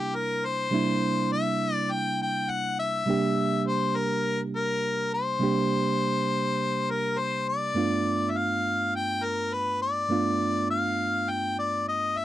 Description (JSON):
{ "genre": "blues", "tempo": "102 BPM", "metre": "4/4", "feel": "swing 54% on 16ths", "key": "C mixolydian", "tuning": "A4 = 440 Hz", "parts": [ { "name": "bright harmonica", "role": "melody", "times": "0.0-12.2 s", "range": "G4 to G5", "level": "-27 LUFS", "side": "left 3 dB", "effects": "overdrive" }, { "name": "barky reed electric piano", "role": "accompaniment", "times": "0.0-12.2 s", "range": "G2 to G4", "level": "-28 LUFS", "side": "right 3 dB", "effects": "overdrive" } ], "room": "little or no reverb", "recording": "dry, close 1970s-style studio recording", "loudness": "-24 LUFS", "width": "side -13 dB against mid", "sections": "0.0-12.2 A section", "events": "none", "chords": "0.0 C9; 7.8 G9" }